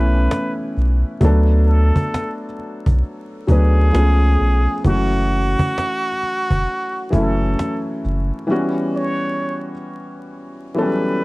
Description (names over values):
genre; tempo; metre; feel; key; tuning
lo-fi hip hop; 66 BPM; 4/4; swing 64% on 16ths; unclear; A4 = 442 Hz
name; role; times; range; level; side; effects
trumpet with plunger mute; melody; 0.0-11.2 s; F#4 to C#5; -24 LUFS; right 1 dB; none
felt-muted upright piano; accompaniment; 0.0-11.2 s; E3 to B4; -22 LUFS; left 1 dB; none
saturated sub bass; bass; 0.0-8.3 s; E1 to D2; -15 LUFS; equal; none
cajon; drums; 0.2-8.2 s; none; -20 LUFS; equal; none
room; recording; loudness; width
light reverb; vinyl crackle; -16 LUFS; side -22 dB against mid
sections
0.0-11.2 A section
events
silent gap 8.5-11.2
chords
0.0 A9; 1.2 D6; 3.9 C#7b13; 4.8 F#m7; 8.5 Em69